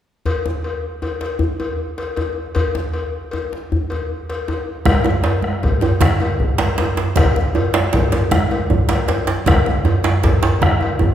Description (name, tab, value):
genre	west african traditional, West African drum ensemble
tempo	104 BPM (dotted quarters)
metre	12/8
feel	straight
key	none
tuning	none
part	cowbell	percussion	0.3-11.0 s	none	-25 LUFS	left 5 dB	none
part	djembe	percussion	0.3-11.0 s	none	-22 LUFS	left 1 dB	none
part	bombo	percussion	4.9-11.1 s	none	-19 LUFS	equal	none
part	congas	percussion	4.9-11.1 s	none	-25 LUFS	right 2 dB	none
part	djembe	percussion	5.0-11.1 s	none	-18 LUFS	right 2 dB	none
room	wet recital hall reverb, RT60 1.7 s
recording	recorded in a church or concert hall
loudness	-16 LUFS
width	side -10 dB against mid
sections	0.2-4.9 A section; 4.9-11.1 B section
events	none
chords	none